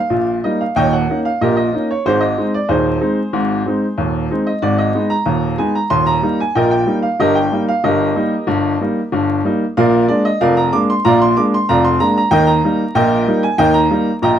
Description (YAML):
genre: ragtime piano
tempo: 93 BPM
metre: 2/4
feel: straight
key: Eb major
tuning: A4 = 440 Hz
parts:
  - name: bright upright piano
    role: solo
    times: 0.0-14.4 s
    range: Eb1 to D6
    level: -13 LUFS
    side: equal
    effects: none
room: moderate small room reverb, RT60 0.5 s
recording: dark, warm production, vinyl crackle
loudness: -13 LUFS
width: side -9 dB against mid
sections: 0.0-14.4 A section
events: none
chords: 0.0 Eb; 0.8 Eb7; 2.0 Ab; 4.6 Abm; 5.9 Eb; 7.2 Eb/G; 9.8 Bb7; 12.3 Eb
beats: 0.11 | 0.76 1.40 | 2.05 2.69 | 3.34 3.98 | 4.63 5.27 | 5.91 6.56 | 7.20 7.84 | 8.48 9.13 | 9.77 10.41 | 11.05 11.69 | 12.33 12.97 | 13.61 14.25